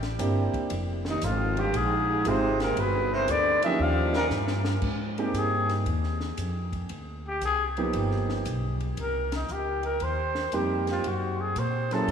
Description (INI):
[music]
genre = jazz, small-group swing and bop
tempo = 116 BPM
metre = 4/4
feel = swing 68% on 8ths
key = Ab major from 4.8 s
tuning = A4 = 445 Hz
[part]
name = upright bass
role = bass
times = 0.0-12.1 s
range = F1 to Bb2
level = -30 LUFS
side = equal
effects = none
[part]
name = compact cocktail drum kit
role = drums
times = 0.0-12.1 s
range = crash cymbal, hi-hat, kick drum, ride cymbal, snare drum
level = -38 LUFS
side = left 1 dB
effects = none
[part]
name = warm baby grand piano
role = accompaniment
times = 0.2-12.1 s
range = F3 to Ab4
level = -32 LUFS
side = right 2 dB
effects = none
[part]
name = growling trumpet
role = melody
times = 1.1-12.1 s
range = Eb4 to F5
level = -29 LUFS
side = left 1 dB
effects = none
[part]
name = warm baritone saxophone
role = second line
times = 1.1-4.3 s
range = Eb2 to F3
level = -33 LUFS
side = right 2 dB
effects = none
[sound]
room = wet cathedral reverb, RT60 5.0 s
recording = in a vast, echoing space, studio reverb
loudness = -24 LUFS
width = side -7 dB against mid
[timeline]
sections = 0.0-4.8 A section; 4.8-12.1 B section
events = drum fill 4.3-4.8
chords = 0.0 C7; 0.7 Fm9; 2.8 G5; 3.8 Eb7; 4.8 Abmaj9; 6.9 Cm11; 7.9 G7alt; 9.0 Cm7; 11.0 Gb9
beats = 0.19 | 0.70 1.22 1.74 2.25 | 2.77 3.28 3.80 4.32 | 4.83 5.35 5.87 6.38 | 6.90 7.42 7.94 8.46 | 8.98 9.49 10.01 10.53 | 11.05 11.57 12.08